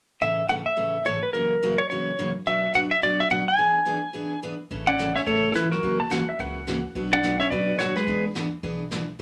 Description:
country, western swing; 214 BPM; 4/4; swing 60% on 8ths; A major; A4 = 443 Hz
clean lap steel guitar; melody; 0.2-8.2 s; E4 to G#5; -25 LUFS; equal
picked steel-string acoustic guitar; accompaniment; 0.2-9.2 s; F#2 to A4; -32 LUFS; equal
upright bass; bass; 4.7-9.2 s; F#1 to F#2; -42 LUFS; equal
jazz brush drum kit; drums; 4.7-9.2 s; brushed snare drum, hi-hat, kick drum, snare drum; -39 LUFS; equal
hollow-body jazz guitar; second line; 4.9-8.2 s; E3 to D4; -30 LUFS; equal
clean lap steel guitar; second line; 6.0-7.0 s; E5 to A5; -33 LUFS; equal
wet small room reverb, RT60 0.5 s; lossy compression artefacts; -24 LUFS; mono
0.2-4.7 A section; 4.7-9.2 B section
0.2 A; 1.3 F#7; 2.5 Bm; 3.6 E7; 4.7 A; 5.8 F#7; 7.0 Bm; 8.1 E7
| 0.22 0.50 0.78 1.06 | 1.34 1.62 1.90 2.18 | 2.46 2.74 3.02 3.31 | 3.59 3.87 4.15 4.43 | 4.71 4.99 5.27 5.55 | 5.83 6.11 6.39 6.67 | 6.95 7.23 7.51 7.79 | 8.07 8.35 8.63 8.91 | 9.20

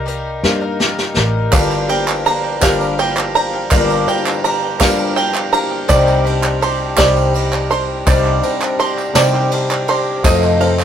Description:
indie folk with a building arrangement; 55 BPM (dotted quarters); 6/8; straight; G minor; A4 = 442 Hz
picked twelve-string acoustic guitar; accompaniment; 0.0-10.8 s; G2 to Bb4; -20 LUFS; left 2 dB
fingered electric bass; bass; 0.0-10.8 s; G1 to C3; -20 LUFS; equal
vintage brush drum kit; drums; 0.1-10.8 s; hi-hat, kick drum, ride cymbal, snare drum; -19 LUFS; equal
dark upright piano; accompaniment; 1.5-10.8 s; F1 to Eb5; -20 LUFS; left 3 dB
bluegrass banjo; arpeggios; 1.5-10.8 s; D5 to C6; -19 LUFS; right 5 dB; tape echo
group handclap; percussion; 1.5-10.8 s; -21 LUFS; right 3 dB
tambourine; percussion; 1.5-10.8 s; -31 LUFS; left 3 dB
wet booth ambience, RT60 0.2 s; rough rehearsal-room recording; -13 LUFS; side -9 dB against mid
0.0-1.5 A section; 1.5-10.8 B section
drum fill 0.4-1.5
0.0 Cm7; 1.5 Gm7; 5.9 Cmadd9; 10.2 F7
0.44 | 1.53 2.62 | 3.71 4.80 | 5.89 6.98 | 8.07 9.15 | 10.24

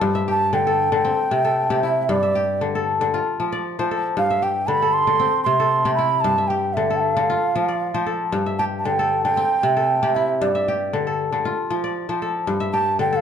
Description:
west african traditional, West African string and xylophone music; 116 BPM; 4/4; straight; A4 = 440 Hz
kora; arpeggios; 0.0-13.2 s; G2 to E5; -21 LUFS; left 3 dB
mellow bansuri; melody; 0.3-13.2 s; D5 to C6; -20 LUFS; right 3 dB
moderate recital hall reverb, RT60 1.4 s; dark, warm production; -18 LUFS; side -8 dB against mid
0.0-12.5 A section
0.0 G5; 1.1 C; 2.1 G5; 3.1 F; 4.2 G5; 5.2 C; 6.3 G5; 7.3 F; 8.3 G5; 9.4 C; 10.4 G5; 11.4 F; 12.5 G5
| 0.02 0.54 1.06 1.58 | 2.10 2.62 3.13 3.65 | 4.17 4.69 5.21 5.73 | 6.25 6.77 7.29 7.81 | 8.33 8.85 9.37 9.89 | 10.41 10.93 11.45 11.96 | 12.48 13.00

